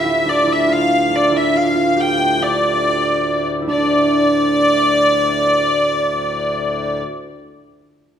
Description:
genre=medieval dance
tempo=141 BPM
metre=3/4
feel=straight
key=D minor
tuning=A4 = 439 Hz
part: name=rich hurdy-gurdy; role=melody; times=0.0-7.0 s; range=D5 to G5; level=-16 LUFS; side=equal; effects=none
part: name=concert harp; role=second line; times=0.0-7.7 s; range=D4 to G4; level=-20 LUFS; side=right 2 dB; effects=slapback echo
part: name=hand-pumped harmonium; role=drone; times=0.0-7.0 s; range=D2 to A2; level=-26 LUFS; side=left 2 dB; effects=none
room=wet recital hall reverb, RT60 1.5 s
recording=none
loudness=-14 LUFS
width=side -9 dB against mid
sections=0.0-3.7 A section; 3.7-6.2 B section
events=none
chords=none

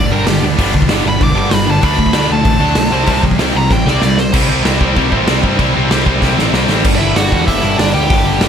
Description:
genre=punk rock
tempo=191 BPM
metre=4/4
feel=straight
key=G major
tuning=A4 = 440 Hz
part: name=high-gain lead guitar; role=melody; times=0.0-4.3, 7.0-8.5 s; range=D4 to D6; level=-18 LUFS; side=equal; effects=distortion
part: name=cranked stack guitar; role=riff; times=0.0-8.5 s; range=G2 to D4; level=-19 LUFS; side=left 14 dB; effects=overdrive
part: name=heavy high-gain guitar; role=riff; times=0.0-6.8 s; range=G2 to E4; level=-20 LUFS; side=left 2 dB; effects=distortion
part: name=tight distorted guitar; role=riff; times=0.0-8.5 s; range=G2 to D4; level=-19 LUFS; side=right 12 dB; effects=distortion
part: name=fuzz picked electric bass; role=bass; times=0.0-8.5 s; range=E1 to G2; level=-18 LUFS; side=equal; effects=overdrive
part: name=raw garage drum kit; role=drums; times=0.3-8.5 s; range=crash cymbal, hi-hat, kick drum, snare drum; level=-15 LUFS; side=equal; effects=none
room=little or no reverb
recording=none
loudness=-10 LUFS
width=side -8 dB against mid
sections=0.0-4.3 A section; 4.3-6.8 B section; 6.8-8.5 C section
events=lead electric guitar solo 0.0-4.3; drum fill 3.7-4.3, 6.2-6.8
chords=0.0 G; 1.8 D; 2.9 C; 6.8 G5

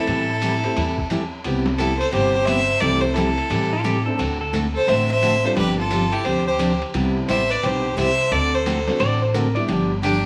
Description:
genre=country, western swing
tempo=175 BPM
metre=4/4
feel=swing 63% on 8ths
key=C major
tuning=A4 = 440 Hz
part: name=clear fiddle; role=melody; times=0.0-10.3 s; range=G4 to E5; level=-25 LUFS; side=equal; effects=none
part: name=clear fiddle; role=second line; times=0.0-10.3 s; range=D4 to C5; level=-28 LUFS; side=equal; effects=none
part: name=clear upright piano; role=accompaniment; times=0.0-9.7 s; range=G3 to A4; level=-31 LUFS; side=equal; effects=none
part: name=picked steel-string acoustic guitar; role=accompaniment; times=0.1-10.2 s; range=C3 to A4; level=-26 LUFS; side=equal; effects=none
part: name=upright bass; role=bass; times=0.1-10.2 s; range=G1 to A2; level=-28 LUFS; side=equal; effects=none
part: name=lo-fi sampler-style drum kit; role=drums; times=0.1-10.1 s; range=hi-hat, kick drum, ride cymbal, snare drum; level=-33 LUFS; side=equal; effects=none
part: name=clean lap steel guitar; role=second line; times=3.7-4.6, 9.0-10.0 s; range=F4 to D5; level=-28 LUFS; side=equal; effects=none
room=light reverb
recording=small room ambience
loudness=-20 LUFS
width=mono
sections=0.0-10.3 A section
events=none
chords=0.1 Am7; 1.4 Cmaj7; 2.8 Am7/C; 4.2 D7; 5.6 G7sus4; 6.9 Cmaj7; 8.3 D7; 9.7 G7

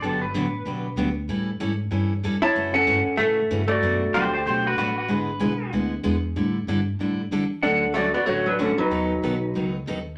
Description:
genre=country, western swing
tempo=189 BPM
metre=4/4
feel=swing 62% on 8ths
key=D major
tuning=A4 = 440 Hz
part: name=pedal steel guitar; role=second line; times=0.0-1.1, 4.1-5.7 s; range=F#4 to C5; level=-28 LUFS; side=equal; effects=none
part: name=picked steel-string acoustic guitar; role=accompaniment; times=0.0-10.0 s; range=B2 to A4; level=-29 LUFS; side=equal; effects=none
part: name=upright bass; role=bass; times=0.0-10.1 s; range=G1 to E3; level=-32 LUFS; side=equal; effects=none
part: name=clean lap steel guitar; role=melody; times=2.4-4.9, 7.6-9.7 s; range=C#4 to A5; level=-25 LUFS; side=equal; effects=none
part: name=archtop guitar, miked and amplified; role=second line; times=2.4-4.9, 7.6-9.7 s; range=D3 to E4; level=-28 LUFS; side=equal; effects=none
room=wet studio reverb, RT60 0.6 s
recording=none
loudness=-24 LUFS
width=mono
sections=0.0-7.6 A section; 7.6-10.2 B section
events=none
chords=0.0 Gmaj7; 1.3 A7; 2.6 F#m7; 3.8 Bm7; 5.1 E7/G#; 6.4 A7sus4; 7.6 Dmaj7; 8.9 B7

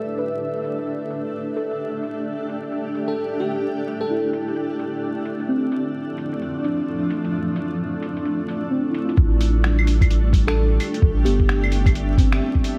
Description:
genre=future garage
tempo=130 BPM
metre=4/4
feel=swing 62% on 16ths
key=A minor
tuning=A4 = 440 Hz
part: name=muted felt-like synth keys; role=accompaniment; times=0.0-12.8 s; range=G3 to B4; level=-30 LUFS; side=equal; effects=chorus, sidechain pumping, tape echo
part: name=granular cloud pad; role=sustained chords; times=0.0-12.8 s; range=F3 to E5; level=-28 LUFS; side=equal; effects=built-in reverb, sidechain pumping
part: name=lo-fi sampler-style drum kit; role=drums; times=0.2-12.8 s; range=claves, finger snaps, hi-hat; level=-33 LUFS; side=equal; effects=low-pass filter on hats, low-pass filter on snare, low-pass filter on perc
part: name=bell-like FM electric piano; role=melody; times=3.1-4.6, 10.5-11.9 s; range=G4 to A4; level=-30 LUFS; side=equal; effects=chorus, phaser, analog delay
part: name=soft dub sub bass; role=bass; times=9.2-12.4 s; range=G1 to A1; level=-22 LUFS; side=equal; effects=sidechain pumping
part: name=electronic kick drum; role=drums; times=9.2-12.6 s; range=none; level=-20 LUFS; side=equal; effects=none
room=moderate scoring stage reverb, RT60 1.7 s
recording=vinyl crackle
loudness=-22 LUFS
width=mono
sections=0.0-9.2 A section; 9.2-12.8 B section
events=none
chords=0.0 A5; 1.8 F; 9.2 Am7

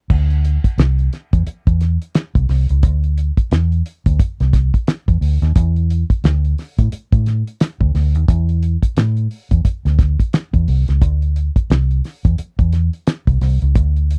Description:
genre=funk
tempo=88 BPM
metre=4/4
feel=swing 60% on 16ths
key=unclear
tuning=A4 = 441 Hz
part: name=vintage muted fingered electric bass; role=bass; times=0.1-14.2 s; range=C2 to A2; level=-17 LUFS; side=equal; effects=none
part: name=cloth-damped thuddy drum kit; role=drums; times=0.1-14.2 s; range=crash cymbal, hi-hat, kick drum, snare drum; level=-18 LUFS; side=equal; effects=none
room=little or no reverb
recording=dry, close 1970s-style studio recording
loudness=-17 LUFS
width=mono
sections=0.1-14.2 A section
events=none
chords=none

